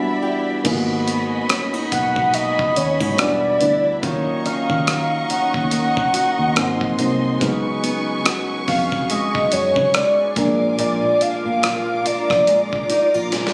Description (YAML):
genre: contemporary R&B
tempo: 71 BPM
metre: 4/4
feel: swing 58% on 16ths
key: unclear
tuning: A4 = 440 Hz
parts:
  - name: soft electric-piano-like synth keys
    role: accompaniment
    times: 0.0-13.5 s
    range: F3 to Gb4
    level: -27 LUFS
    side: equal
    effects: chorus
  - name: warm studio string section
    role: sustained chords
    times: 0.0-13.5 s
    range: Eb4 to D6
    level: -29 LUFS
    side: equal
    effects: none
  - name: fingerpicked steel-string acoustic guitar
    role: arpeggios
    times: 0.0-13.5 s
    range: Ab2 to G4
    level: -29 LUFS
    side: equal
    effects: tape echo
  - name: dusty soul sampler-style drum kit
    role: drums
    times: 0.6-13.5 s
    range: crash cymbal, hi-hat, kick drum, rim click, snare drum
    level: -25 LUFS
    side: equal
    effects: none
  - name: vintage muted fingered electric bass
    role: bass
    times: 0.7-13.3 s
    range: E1 to Eb3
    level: -30 LUFS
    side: equal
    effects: none
  - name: warm velvety synth lead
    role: melody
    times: 1.9-13.5 s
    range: Db5 to Gb5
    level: -21 LUFS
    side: equal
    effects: chorus, tape echo
room: moderate studio reverb, RT60 0.5 s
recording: recorded on a phone in the room, studio reverb, compression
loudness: -19 LUFS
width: mono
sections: 0.6-13.5 A section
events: break 0.0-0.6; drum fill 13.3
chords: 0.0 Em7; 0.6 Abm7; 3.2 Em7; 4.0 Ebm7; 6.6 Ab7; 7.4 Db7sus4; 10.4 Bb7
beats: | 0.65 1.49 2.34 3.18 | 4.03 4.87 5.72 6.56 | 7.41 8.25 9.10 9.94 | 10.79 11.63 12.48 13.32